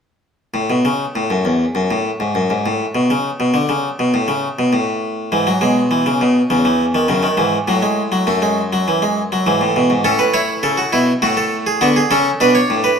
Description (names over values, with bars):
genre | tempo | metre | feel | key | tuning
classical, baroque-style 4-part fugue for harpsichord | 101 BPM | 4/4 | straight | unclear | A4 = 441 Hz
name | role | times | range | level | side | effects
harpsichord | solo | 0.5-13.0 s | E2 to C#5 | -14 LUFS | equal | none
room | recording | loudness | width
wet stone room reverb, RT60 1.3 s | minimal, uncompressed stereo recording | -14 LUFS | side -6 dB against mid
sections
0.5-13.0 A section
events
none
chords
0.5 N.C.; 5.3 E/G#; 6.5 C#m/E; 7.7 F#m/A; 8.9 E; 10.0 A; 11.2 F#m/A; 12.4 Bm